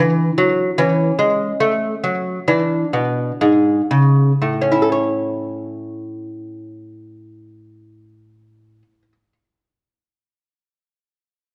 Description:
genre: classical, baroque-style dance for lute.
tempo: 58-78 BPM.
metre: 4/4.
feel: rubato.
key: A major.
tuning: A4 = 438 Hz.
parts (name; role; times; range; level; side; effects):
lute; solo; 0.0-9.3 s; G#2 to C#5; -18 LUFS; equal; slapback echo.
room: wet recital hall reverb, RT60 1.6 s.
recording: worn, warbling old tape, cassette tape, warbly pitch drift.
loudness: -17 LUFS.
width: mono.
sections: 0.0-4.4 A section; 4.4-8.4 B section.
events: slowing down 0.0-4.4.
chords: 0.0 C#madd11 (rootless); 0.8 A/E; 2.5 E7; 4.4 A.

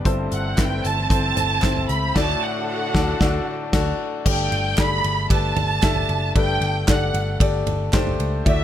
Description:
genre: piano-driven pop.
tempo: 114 BPM.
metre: 4/4.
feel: straight.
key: G major.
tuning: A4 = 441 Hz.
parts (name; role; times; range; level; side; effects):
clear baby grand piano; accompaniment; 0.0-8.6 s; G2 to E5; -25 LUFS; left 4 dB; none.
rich symphonic string section; sustained chords; 0.0-4.2 s; D3 to A4; -32 LUFS; left 1 dB; none.
vintage muted picked electric bass; bass; 0.1-8.6 s; F#1 to D2; -24 LUFS; equal; none.
natural country drum kit; drums; 0.1-8.6 s; crash cymbal, handclaps, hi-hat, kick drum, ride cymbal, snare drum, toms; -22 LUFS; equal; none.
dark studio violin section; melody; 0.3-8.6 s; E5 to B5; -24 LUFS; right 3 dB; none.
group handclap; percussion; 0.6-8.1 s; none; -32 LUFS; right 5 dB; none.
room: light reverb, small room ambience.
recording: none.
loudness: -18 LUFS.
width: side -11 dB against mid.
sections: 0.0-4.3 A section; 4.3-8.6 B section.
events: band accent 2.2-4.3.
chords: 0.1 Am/G; 2.2 D; 4.3 Gsus2.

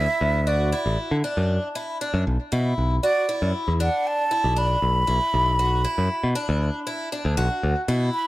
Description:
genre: progressive instrumental, band music in an uneven meter.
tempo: 117 BPM.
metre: 5/4.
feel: straight.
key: B minor.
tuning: A4 = 440 Hz.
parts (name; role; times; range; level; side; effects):
breathy mellow silver concert flute; melody; 0.0-8.3 s; D5 to B5; -23 LUFS; right 1 dB; none.
picked twelve-string acoustic guitar; arpeggios; 0.0-8.3 s; D4 to F#4; -28 LUFS; left 1 dB; analog delay.
modern bright picked electric bass; bass; 0.0-8.1 s; A1 to D3; -22 LUFS; equal; none.
room: light reverb.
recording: none.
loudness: -20 LUFS.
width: side -17 dB against mid.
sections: 0.0-7.4 A section.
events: none.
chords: 0.0 D; 2.3 Bm.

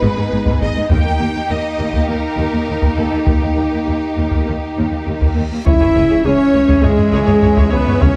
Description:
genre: cinematic, epic orchestral film score.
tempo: 102 BPM.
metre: 4/4.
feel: straight.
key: unclear.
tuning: A4 = 440 Hz.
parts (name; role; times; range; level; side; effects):
rich symphonic violin section; melody; 0.0-8.2 s; G4 to G5; -28 LUFS; equal; none.
clear symphonic violin section; second line; 0.0-8.2 s; D#4 to E5; -29 LUFS; equal; none.
warm symphonic viola section; accompaniment; 0.0-8.1 s; G#3 to C#5; -28 LUFS; equal; none.
warm French horn section; sustained chords; 0.0-8.2 s; G#3 to E4; -20 LUFS; equal; none.
rich symphonic cello section; bass; 0.0-8.1 s; C#2 to G#2; -25 LUFS; equal; none.
rich symphonic double bass section; bass; 0.0-8.1 s; G#1 to D#2; -25 LUFS; equal; none.
taiko ensemble; drums; 0.5-8.2 s; none; -19 LUFS; equal; none.
reverse cymbal and impact; sound effects; 5.3-8.0 s; none; -32 LUFS; equal; none.
mellow hollow silver concert flute; second line; 5.7-8.2 s; G#4 to E5; -25 LUFS; equal; none.
warm trombone section; sustained chords; 5.7-8.2 s; E3 to C#4; -29 LUFS; equal; none.
clear trumpet; stabs; 5.7-8.2 s; G#3 to E4; -24 LUFS; equal; none.
room: moderate scoring stage reverb, RT60 1.6 s.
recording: dark, warm production.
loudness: -15 LUFS.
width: mono.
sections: 0.0-5.7 A section; 5.7-8.2 A section.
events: reverse cymbal 5.3-5.7; impact 5.7-8.0.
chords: 0.0 G#m; 0.9 D#; 5.7 C#m.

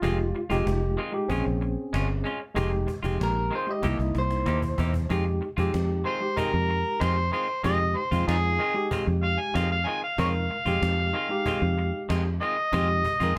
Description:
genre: straight-eighth soul blues.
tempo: 94 BPM.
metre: 4/4.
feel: straight.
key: F minor.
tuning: A4 = 439 Hz.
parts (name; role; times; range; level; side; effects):
electric guitar through a small old amp; melody; 0.0-5.1 s; F4 to Eb5; -34 LUFS; equal; none.
tine electric piano; accompaniment; 0.0-13.4 s; Ab3 to Bb4; -33 LUFS; equal; none.
semi-hollow electric guitar; stabs; 0.0-13.4 s; Eb3 to G4; -36 LUFS; equal; warbly pitch drift.
fingered electric bass; bass; 0.0-13.4 s; F1 to F2; -29 LUFS; equal; none.
cajon; drums; 0.0-13.3 s; none; -40 LUFS; equal; none.
overdriven harmonica; second line; 6.1-13.3 s; Eb4 to Ab5; -29 LUFS; equal; none.
room: light reverb.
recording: none.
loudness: -26 LUFS.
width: mono.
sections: 0.0-5.1 A section; 5.1-13.4 A section.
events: clean electric guitar solo 0.0-5.1; drum fill 3.8-5.1; harmonica solo 5.1-13.4.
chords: 0.0 Fm7; 1.3 Bbm7; 2.6 Fm7; 3.8 C7#9; 5.1 Fm7.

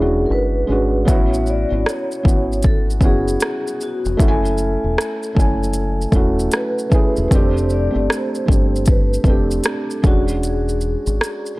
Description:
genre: lo-fi hip hop.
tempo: 77 BPM.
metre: 4/4.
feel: swing 64% on 16ths.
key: A major.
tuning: A4 = 440 Hz.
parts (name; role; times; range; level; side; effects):
vibraphone with soft mallets; melody; 0.0-11.6 s; F#4 to D5; -25 LUFS; left 1 dB; low-pass filter.
felt-muted upright piano; accompaniment; 0.0-11.6 s; G#3 to G#5; -21 LUFS; right 1 dB; cassette tape, low-pass filter.
deep dub fingered electric bass; bass; 0.0-11.2 s; E1 to A1; -21 LUFS; equal; tube saturation.
organic electronic drum kit; drums; 1.1-11.6 s; hi-hat, kick drum, rim click, shaker; -17 LUFS; equal; none.
room: digital ambience.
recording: dry, gritty hardware recording.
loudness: -15 LUFS.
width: side -21 dB against mid.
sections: 0.0-11.6 A section.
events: break 10.4-11.6.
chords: 0.0 E13; 1.1 A6; 4.2 F#m7; 7.3 F69; 10.0 E13.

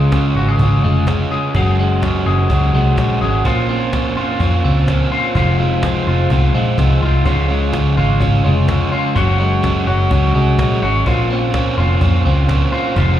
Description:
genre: jangly indie pop.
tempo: 126 BPM.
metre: 4/4.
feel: straight.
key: unclear.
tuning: A4 = 443 Hz.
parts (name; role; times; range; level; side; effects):
crunchy overdriven guitar; accompaniment; 0.0-13.2 s; Bb2 to Db5; -20 LUFS; right 5 dB; slapback echo.
clean electric guitar; arpeggios; 0.0-13.2 s; F2 to Ab4; -18 LUFS; left 4 dB; digital delay, slapback echo.
vintage muted picked electric bass; bass; 0.0-13.2 s; F1 to F2; -16 LUFS; equal; none.
cajon; drums; 0.1-13.1 s; none; -21 LUFS; equal; none.
room: light reverb, small room ambience.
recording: live gig heard through the venue's PA, club reverb.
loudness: -13 LUFS.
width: side -11 dB against mid.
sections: 0.0-13.2 A section.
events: drum fill 13.0.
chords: 0.0 Db; 1.5 Gbsus2; 3.5 Bbmadd9; 5.4 Fm7; 7.3 Db; 9.2 Gbsus2; 11.1 Bbmadd9.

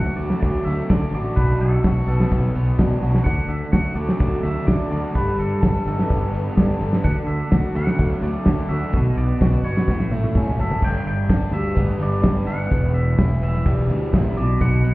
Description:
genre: indie rock.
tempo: 127 BPM.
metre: 4/4.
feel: straight.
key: D major.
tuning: A4 = 443 Hz.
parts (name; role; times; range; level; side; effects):
twangy electric guitar; melody; 0.0-14.9 s; A4 to G5; -31 LUFS; equal; none.
biting overdriven guitar; riff; 0.0-14.9 s; E2 to A4; -25 LUFS; equal; none.
growling fingered electric bass; bass; 0.0-14.9 s; E1 to D3; -21 LUFS; equal; overdrive.
cloth-damped thuddy drum kit; drums; 0.2-14.9 s; crash cymbal, hi-hat, kick drum, snare drum, toms; -20 LUFS; equal; none.
string machine, violins; sustained chords; 3.2-10.8, 14.6-14.9 s; D3 to F#5; -33 LUFS; equal; ensemble chorus.
room: light reverb.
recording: heard muffled through a wall, stone room reverb, EQ.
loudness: -18 LUFS.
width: side -19 dB against mid.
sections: 0.0-10.8 A section; 10.8-14.9 B section.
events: drum fill 9.9-10.8.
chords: 0.0 D; 1.4 Bm; 3.3 D; 5.2 Gadd9; 7.0 D; 8.9 Bm; 9.9 A; 10.8 G; 12.7 Em; 14.4 Bm.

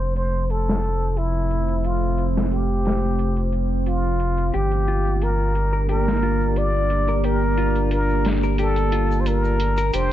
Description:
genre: trip hop.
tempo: 89 BPM.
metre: 4/4.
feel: straight.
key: G minor.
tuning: A4 = 440 Hz.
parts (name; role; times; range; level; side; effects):
trumpet with plunger mute; melody; 0.0-10.1 s; E4 to D5; -25 LUFS; equal; tape echo.
deep dark ambient pad; sustained chords; 0.0-10.1 s; F3 to D5; -26 LUFS; right 1 dB; chorus, built-in reverb.
round analog bass; bass; 0.0-10.1 s; F1 to G1; -22 LUFS; equal; tube saturation.
dusty soul sampler-style drum kit; drums; 0.2-10.1 s; hi-hat, snare drum; -28 LUFS; left 1 dB; overdrive, low-pass filter on hats, low-pass filter on snare.
clean electric guitar; arpeggios; 4.5-10.1 s; F4 to Bb4; -30 LUFS; left 5 dB; tape echo.
tube shaker; percussion; 4.5-10.1 s; none; -53 LUFS; left 4 dB; none.
room: little or no reverb.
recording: low-pass filter.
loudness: -19 LUFS.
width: side -12 dB against mid.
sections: 0.0-10.1 A section.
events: filter sweep 0.0-10.1.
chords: 0.0 F; 4.5 Gm.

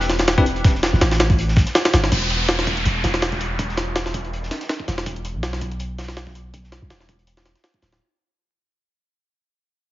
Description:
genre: drum and bass, jungle.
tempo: 163 BPM.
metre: 4/4.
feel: swing 54% on 16ths.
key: E minor.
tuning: A4 = 438 Hz.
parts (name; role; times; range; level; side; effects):
long sustained 808-style bass; bass; 0.0-8.0 s; D1 to B1; -23 LUFS; equal; tube saturation.
crunchy breakbeat drum kit; drums; 0.0-7.9 s; hi-hat, snare drum; -33 LUFS; right 1 dB; none.
jungle sampler-style drum kit; drums; 0.1-8.0 s; hi-hat, kick drum, snare drum; -20 LUFS; equal; high-pass filter on kick, high-pass filter on hats, high-pass filter on snare, high-pass filter on room.
downlifter; sound effects; 2.1-5.1 s; none; -26 LUFS; equal; none.
room: light reverb, digital ambience.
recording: heavily compressed radio sound, vinyl crackle, nothing above 7.5 kHz.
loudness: -18 LUFS.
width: side -15 dB against mid.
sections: 0.0-2.1 A section; 2.1-8.0 B section.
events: drop 0.0-2.1; fade-out 2.1-8.0.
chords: none.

